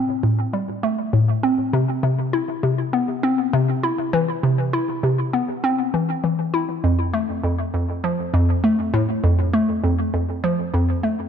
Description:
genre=ambient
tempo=100 BPM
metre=4/4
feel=straight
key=unclear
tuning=A4 = 440 Hz
part: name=hollow square pluck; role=solo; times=0.0-11.3 s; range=F2 to E4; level=-18 LUFS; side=equal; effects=chorus, tape echo
room=moderate plate reverb, RT60 2.3 s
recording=none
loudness=-18 LUFS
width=side -8 dB against mid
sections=0.0-11.3 A section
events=fade-out 10.0-11.3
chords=none

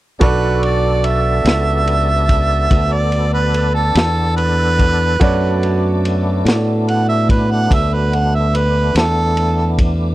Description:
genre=slow blues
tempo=48 BPM (dotted quarters)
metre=12/8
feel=straight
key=B minor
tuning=A4 = 440 Hz
part: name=warm harmonica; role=second line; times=0.2-9.8 s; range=A4 to F#5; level=-18 LUFS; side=right 2 dB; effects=overdrive
part: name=bright upright piano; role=accompaniment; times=0.2-10.1 s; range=F#4 to C#6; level=-23 LUFS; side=right 4 dB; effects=none
part: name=tonewheel organ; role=sustained chords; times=0.2-10.1 s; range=A3 to A4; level=-24 LUFS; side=left 2 dB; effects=slow rotary speaker, overdrive, chorus vibrato
part: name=fingered electric bass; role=bass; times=0.2-10.1 s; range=B1 to A2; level=-16 LUFS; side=equal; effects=none
part: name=crunchy breakbeat drum kit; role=drums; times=0.2-10.0 s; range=kick drum, ride cymbal, snare drum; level=-16 LUFS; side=equal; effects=none
room=little or no reverb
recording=dry, close 1970s-style studio recording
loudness=-13 LUFS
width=side -16 dB against mid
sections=0.2-10.1 A section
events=harmonica solo 0.2-10.1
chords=0.2 Bm7

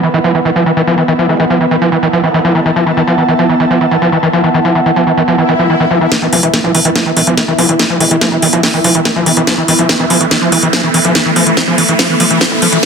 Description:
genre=psychedelic trance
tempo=143 BPM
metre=4/4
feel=straight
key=unclear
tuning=A4 = 440 Hz
part: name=overtone-sweeping drone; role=sustained chords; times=0.0-12.9 s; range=E3 to E4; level=-18 LUFS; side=left 1 dB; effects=chorus, built-in reverb, sidechain pumping
part: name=screaming distorted acid line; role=riff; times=0.0-12.9 s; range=E3 to F3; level=-12 LUFS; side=moving between left 3 dB and right 3 dB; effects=distortion, chorus, auto-pan, sidechain pumping, dub echo
part: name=ethereal airy pad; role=texture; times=0.0-12.9 s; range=B3 to B5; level=-17 LUFS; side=right 2 dB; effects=ensemble chorus, built-in reverb, sidechain pumping
part: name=vowel-sweep wobble bass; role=second line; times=0.9-2.7, 7.6-9.5 s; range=G#3 to D4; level=-25 LUFS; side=right 2 dB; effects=none
part: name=swell and riser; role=sound effects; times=5.4-12.9 s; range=none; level=-20 LUFS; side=right 1 dB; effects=none
part: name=drum and bass drum kit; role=drums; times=6.1-12.9 s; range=hi-hat, snare drum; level=-12 LUFS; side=equal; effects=none
part: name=electronic kick drum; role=drums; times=6.1-12.9 s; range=none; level=-23 LUFS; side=equal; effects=none
part: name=tight sequencer bass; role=bass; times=6.3-12.8 s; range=D1 to B1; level=-22 LUFS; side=equal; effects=high-pass filter
room=moderate digital room reverb, RT60 0.9 s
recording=dense, heavily limited modern master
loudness=-9 LUFS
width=side -6 dB against mid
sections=0.0-6.1 A section; 6.1-12.9 B section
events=filter sweep on synth drone 0.0-6.1; swell 5.4-6.1; build-up 6.1-12.9; drum fill 6.1-12.9; riser 6.1-12.9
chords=0.0 E5

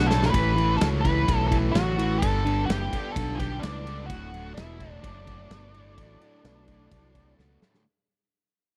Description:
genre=blues rock power trio and southern rock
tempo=128 BPM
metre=4/4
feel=straight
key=D major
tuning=A4 = 440 Hz
part: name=octave-fuzz lead guitar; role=melody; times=0.0-7.3 s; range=D4 to B4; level=-32 LUFS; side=equal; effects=distortion
part: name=tonewheel organ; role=sustained chords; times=0.0-7.8 s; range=E3 to B4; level=-44 LUFS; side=equal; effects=none
part: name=overdriven electric guitar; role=riff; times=0.0-7.8 s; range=D2 to F#3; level=-32 LUFS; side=equal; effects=none
part: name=modern bright fingered electric bass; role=bass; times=0.0-7.7 s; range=D1 to C#2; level=-30 LUFS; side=equal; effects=none
part: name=big rock drum kit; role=drums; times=0.1-7.8 s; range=kick drum, ride cymbal, snare drum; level=-31 LUFS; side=equal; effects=none
room=little or no reverb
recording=dry, close 1970s-style studio recording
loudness=-25 LUFS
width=mono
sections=0.0-7.8 A section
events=fade-out 0.0-7.8; drum fill 0.0-0.3, 7.4-7.8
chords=0.3 A; 2.2 G; 4.1 D

